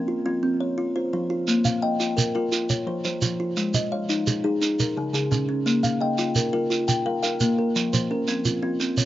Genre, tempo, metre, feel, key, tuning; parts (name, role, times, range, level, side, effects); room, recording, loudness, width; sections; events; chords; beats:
southern african traditional, mbira-style interlocking cycle; 115 BPM (dotted quarters); 12/8; straight; Bb dorian; A4 = 440 Hz
kalimba; arpeggios; 0.0-9.1 s; Db3 to G5; -24 LUFS; left 3 dB
kalimba; arpeggios; 0.0-9.1 s; Db3 to F5; -28 LUFS; right 3 dB
shekere; percussion; 1.5-9.1 s; -25 LUFS; right 3 dB
little or no reverb; recorded outdoors, with no room sound, nothing above 7.5 kHz; -21 LUFS; side -14 dB against mid
0.0-9.1 A section
0.0 F5; 1.5 Bb5; 2.5 F5; 3.6 Ab5; 4.6 Db5; 5.7 Bb5; 7.8 F5
0.43 0.95 | 1.47 2.00 2.52 3.04 | 3.57 4.09 4.62 5.14 | 5.66 6.19 6.71 7.23 | 7.76 8.28 8.80